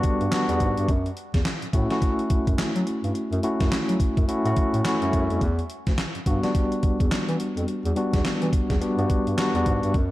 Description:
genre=R&B, new jack swing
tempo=106 BPM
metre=4/4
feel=swing 61% on 16ths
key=E dorian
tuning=A4 = 440 Hz
part: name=tine electric piano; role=accompaniment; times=0.0-10.0 s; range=G3 to A4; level=-25 LUFS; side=left 1 dB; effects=medium tremolo
part: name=gated 80s digital drum machine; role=drums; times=0.0-10.1 s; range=handclaps, hi-hat, kick drum, snare drum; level=-25 LUFS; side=equal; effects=gated reverb, gated reverb snare, overdrive
part: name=mellow bass clarinet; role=bass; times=0.2-10.1 s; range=D2 to F#3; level=-26 LUFS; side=equal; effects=none
room=light reverb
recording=dark, warm production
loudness=-21 LUFS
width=side -16 dB against mid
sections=0.0-10.1 A section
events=none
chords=0.0 Em9 (rootless); 0.9 F#m7; 5.4 Em9

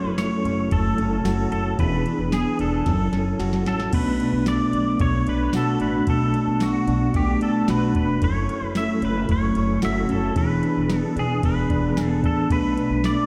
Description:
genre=dream pop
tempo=112 BPM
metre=4/4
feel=straight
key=B minor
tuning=A4 = 441 Hz
part: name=pedal steel guitar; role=melody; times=0.0-13.3 s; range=F#4 to E5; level=-31 LUFS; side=equal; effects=ensemble chorus, tape echo
part: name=mellow tonewheel organ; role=sustained chords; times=0.0-13.3 s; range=E3 to A4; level=-28 LUFS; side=equal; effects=chorus vibrato, fast rotary speaker
part: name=mellow electric guitar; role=arpeggios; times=0.0-13.3 s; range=F#2 to G#4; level=-27 LUFS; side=equal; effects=subtle chorus, tape echo
part: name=upright bass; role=bass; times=0.0-13.1 s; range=E1 to B1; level=-29 LUFS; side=equal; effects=none
part: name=soft vintage rhythm box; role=drums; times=0.2-13.2 s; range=crash cymbal, kick drum, ride cymbal, snare drum, tambourine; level=-29 LUFS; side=equal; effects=none
room=wet plate reverb, RT60 1.2 s, digital ambience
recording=dreamy mix soaked in reverb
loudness=-22 LUFS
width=mono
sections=0.0-3.9 A section; 3.9-13.3 A section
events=drum fill 2.9-3.9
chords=0.0 F#m7; 1.8 E7; 2.9 F#m7; 3.9 Bm7; 8.2 F#m7; 10.4 E7; 12.5 Bm7

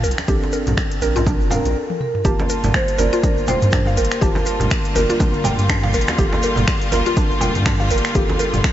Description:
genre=afro house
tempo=122 BPM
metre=4/4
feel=swing 57% on 16ths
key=G minor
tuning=A4 = 440 Hz
part: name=mallet-like synth pluck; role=arpeggios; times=0.0-8.5 s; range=D4 to G5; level=-24 LUFS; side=equal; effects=chorus, sidechain pumping, analog delay
part: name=felt-muted upright piano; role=stabs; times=0.0-8.7 s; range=Bb3 to A5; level=-26 LUFS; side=right 3 dB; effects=sidechain pumping, analog delay
part: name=warm sub bass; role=bass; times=0.0-8.6 s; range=F1 to G2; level=-21 LUFS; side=equal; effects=sidechain pumping
part: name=afro-pop drum kit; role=drums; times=0.0-8.7 s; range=finger snaps, hi-hat, toms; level=-24 LUFS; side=equal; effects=none
part: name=egg shaker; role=percussion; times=0.0-8.7 s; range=none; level=-37 LUFS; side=right 2 dB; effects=none
part: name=congas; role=percussion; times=0.2-8.7 s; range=none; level=-27 LUFS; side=right 2 dB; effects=none
part: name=electronic kick drum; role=drums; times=0.3-8.7 s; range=none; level=-21 LUFS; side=equal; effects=overdrive
part: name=marimba with medium mallets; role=melody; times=1.8-4.9 s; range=A4 to D5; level=-26 LUFS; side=right 1 dB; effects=analog delay
part: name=clear studio string section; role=sustained chords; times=2.2-8.7 s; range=D3 to F4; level=-25 LUFS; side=left 1 dB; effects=sidechain pumping
room=moderate huge ambient reverb, RT60 4.5 s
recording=dreamy mix soaked in reverb, nothing above 7.7 kHz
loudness=-16 LUFS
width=side -12 dB against mid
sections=0.0-2.3 A section; 2.3-8.7 B section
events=stop 1.8-2.3; drum fill 1.9-2.3; drop 2.3-8.7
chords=0.0 Bbmaj7; 2.3 Gm7

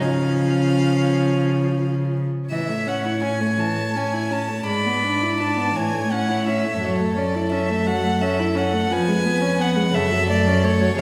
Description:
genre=classical, slow romantic movement for string quartet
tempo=45-60 BPM (dotted quarters)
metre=6/8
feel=rubato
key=A major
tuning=A4 = 440 Hz
part: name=warm violin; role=melody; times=0.0-11.0 s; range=C#5 to B5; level=-28 LUFS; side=equal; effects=none
part: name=rich violin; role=second line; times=0.0-11.0 s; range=Db4 to D5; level=-28 LUFS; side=equal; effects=none
part: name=warm viola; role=accompaniment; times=0.0-11.0 s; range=Db3 to E4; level=-26 LUFS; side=equal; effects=none
part: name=warm cello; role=bass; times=0.0-11.0 s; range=E#2 to Db3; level=-26 LUFS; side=equal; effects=none
room=wet scoring stage reverb, RT60 1.6 s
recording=heard from further back in the room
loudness=-21 LUFS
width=mono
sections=0.0-2.5 A section; 2.5-11.0 B section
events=none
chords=0.0 Db; 2.5 A; 4.7 E7/G#; 5.8 A; 6.8 F#m7; 8.9 C#7/E#; 9.9 F#m

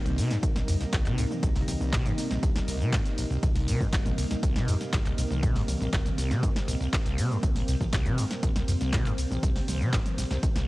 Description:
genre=acid house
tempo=120 BPM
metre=4/4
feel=straight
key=C minor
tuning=A4 = 440 Hz
part: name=warm analog pad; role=sustained chords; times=0.0-10.7 s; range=C3 to Eb4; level=-35 LUFS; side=right 1 dB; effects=chorus, sidechain pumping
part: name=granular cloud pad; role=texture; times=0.0-10.7 s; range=C4 to Eb5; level=-39 LUFS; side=equal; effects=built-in reverb, sidechain pumping
part: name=acid bass, saw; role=riff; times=0.1-10.7 s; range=Bb1 to C3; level=-29 LUFS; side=equal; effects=overdrive, lush chorus, cassette tape, sidechain pumping
part: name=punchy analog drum machine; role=drums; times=0.1-10.7 s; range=handclaps, hi-hat, ride cymbal, shaker, snare drum, toms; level=-34 LUFS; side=equal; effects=none
part: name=breakbeat sampler-style drum kit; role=drums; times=0.2-10.6 s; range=hi-hat, snare drum, tambourine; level=-45 LUFS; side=equal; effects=none
part: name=electronic kick drum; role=drums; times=0.4-10.5 s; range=none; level=-27 LUFS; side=equal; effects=none
part: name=warm sub bass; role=bass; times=0.7-10.0 s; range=G1 to F2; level=-30 LUFS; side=equal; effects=sidechain pumping
room=little or no reverb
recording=dry, gritty hardware recording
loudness=-24 LUFS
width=side -19 dB against mid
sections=0.0-10.7 A section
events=none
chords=0.0 Cm7

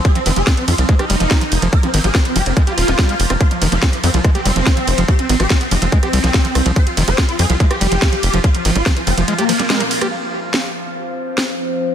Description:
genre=psychedelic trance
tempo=143 BPM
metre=4/4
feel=straight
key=F minor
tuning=A4 = 439 Hz
part: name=overtone-sweeping drone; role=sustained chords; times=0.0-11.9 s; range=F3 to F4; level=-24 LUFS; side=equal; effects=chorus, built-in reverb, sidechain pumping
part: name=overdriven acid bass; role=riff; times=0.0-10.1 s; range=Eb3 to G4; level=-23 LUFS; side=right 1 dB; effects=distortion, auto-pan, sidechain pumping, dub echo
part: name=electronic kick drum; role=drums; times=0.0-8.9 s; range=none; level=-14 LUFS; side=equal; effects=overdrive, studio reverb
part: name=garage drum kit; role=drums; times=0.0-11.5 s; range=hi-hat, ride cymbal, rim click, snare drum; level=-20 LUFS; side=right 1 dB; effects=overdrive, studio reverb
part: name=swarming rave lead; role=melody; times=0.1-10.0 s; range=F3 to C5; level=-21 LUFS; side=equal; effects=chorus, phaser, sidechain pumping, dub echo
part: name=tight sequencer bass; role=bass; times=0.3-9.2 s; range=Eb1 to F2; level=-17 LUFS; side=equal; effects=none
room=light reverb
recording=dense, heavily limited modern master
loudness=-13 LUFS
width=side -9 dB against mid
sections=0.0-10.1 A section; 10.1-11.9 B section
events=drop 0.0-10.1; kick drops out 9.3-10.1; band accent 9.7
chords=0.0 F5

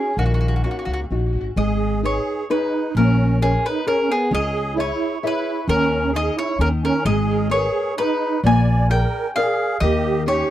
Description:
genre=italian folk, Italian serenade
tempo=131 BPM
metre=3/4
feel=straight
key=G# minor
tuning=A4 = 439 Hz
part: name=mandolin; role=melody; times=0.0-10.5 s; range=Gb4 to G#5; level=-24 LUFS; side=equal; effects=tape echo
part: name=musette accordion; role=second line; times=0.0-10.5 s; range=Bb3 to D5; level=-25 LUFS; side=right 5 dB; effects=none
part: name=nylon-string guitar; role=accompaniment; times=0.0-10.5 s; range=Eb3 to E5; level=-24 LUFS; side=left 3 dB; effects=none
part: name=upright bass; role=bass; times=0.2-10.4 s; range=Ab1 to D#2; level=-20 LUFS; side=equal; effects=none
room=light reverb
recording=dry, close 1970s-style studio recording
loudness=-18 LUFS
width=side -12 dB against mid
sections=0.0-1.6 A section; 1.6-10.5 B section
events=none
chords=0.0 Ebm7; 1.6 G#m; 3.0 A#m7; 4.3 C#m; 5.7 D#7sus4; 6.6 D#5; 7.1 G#madd9; 8.4 A#7; 9.8 D#7

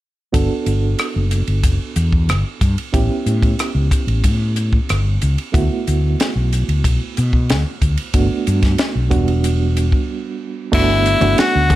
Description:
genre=electric jazz fusion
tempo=92 BPM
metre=4/4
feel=straight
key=G lydian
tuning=A4 = 440 Hz
part: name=bright reed electric piano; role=accompaniment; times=0.3-11.8 s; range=G3 to A4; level=-23 LUFS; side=right 5 dB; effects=fast tremolo
part: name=fretless electric bass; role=bass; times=0.3-11.8 s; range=E1 to B2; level=-17 LUFS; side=equal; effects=none
part: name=crisp fusion drum kit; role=drums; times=0.3-11.8 s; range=crash cymbal, hi-hat, kick drum, ride cymbal, rim click, snare drum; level=-19 LUFS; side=equal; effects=none
part: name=edgy tenor saxophone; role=melody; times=10.7-11.8 s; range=E4 to F#4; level=-15 LUFS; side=left 3 dB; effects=none
part: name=congas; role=percussion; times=11.2-11.8 s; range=none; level=-19 LUFS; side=left 2 dB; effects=none
room=little or no reverb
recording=none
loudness=-15 LUFS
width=side -15 dB against mid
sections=0.3-10.7 A section; 10.7-11.8 B section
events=break 10.1-10.7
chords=0.3 Gmaj9; 2.9 A9; 5.5 D6; 8.1 Gmaj9; 9.1 Em7; 10.7 Gmaj9

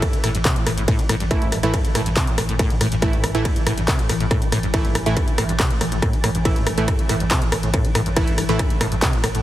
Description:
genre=driving peak-time techno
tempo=140 BPM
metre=4/4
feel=straight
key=A minor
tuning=A4 = 440 Hz
part: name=acid bass, saw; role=riff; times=0.0-9.4 s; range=A1 to E3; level=-24 LUFS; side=equal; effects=lush chorus, sidechain pumping, tape echo
part: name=supersaw stab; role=stabs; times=0.0-8.6 s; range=E3 to E4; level=-26 LUFS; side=right 2 dB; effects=sidechain pumping, tape echo
part: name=swarming drone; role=drone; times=0.2-9.4 s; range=A2 to E3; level=-29 LUFS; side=left 1 dB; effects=built-in reverb, sidechain pumping
part: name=electronic kick drum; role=drums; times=0.0-9.1 s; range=none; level=-21 LUFS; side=equal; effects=distortion, overdrive
part: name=punchy analog drum machine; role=drums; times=0.0-9.4 s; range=handclaps, hi-hat, ride cymbal, rim click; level=-24 LUFS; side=equal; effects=none
part: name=saturated sub bass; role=bass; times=0.1-9.4 s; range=A1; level=-27 LUFS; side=equal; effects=overdrive, sidechain pumping, low-pass filter
room=light reverb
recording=heavily compressed radio sound, multiband compression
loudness=-17 LUFS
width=side -14 dB against mid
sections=0.0-9.4 A section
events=none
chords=0.0 A5

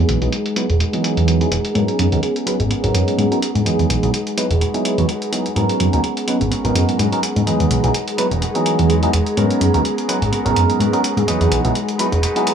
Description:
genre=filtered disco house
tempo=126 BPM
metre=4/4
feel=swing 55% on 16ths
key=unclear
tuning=A4 = 441 Hz
part: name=bell-like tine electric piano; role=accompaniment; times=0.0-12.5 s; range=E3 to B4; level=-20 LUFS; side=right 1 dB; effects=phaser, low-pass filter
part: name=string machine, full ensemble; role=sustained chords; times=0.0-12.5 s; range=G#4 to A#5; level=-24 LUFS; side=right 1 dB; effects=ensemble chorus, low-pass filter
part: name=clean electric guitar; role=riff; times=0.0-12.5 s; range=G#3 to B4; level=-26 LUFS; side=equal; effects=low-pass filter
part: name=plucky analog bass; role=bass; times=0.0-12.3 s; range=E1 to G#2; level=-17 LUFS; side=right 1 dB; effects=low-pass filter
part: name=electronic hi-hat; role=drums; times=0.1-12.5 s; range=none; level=-26 LUFS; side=equal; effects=low-pass filter on hats, low-pass filter on snare, low-pass filter on room
room=light reverb, digital ambience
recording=none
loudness=-15 LUFS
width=side -8 dB against mid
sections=0.0-12.5 A section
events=filter sweep 0.0-12.5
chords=0.0 Emaj9; 1.8 G#m11; 3.7 Emaj9; 5.6 G#m11; 7.5 Emaj9; 9.4 G#m11; 11.3 Emaj9

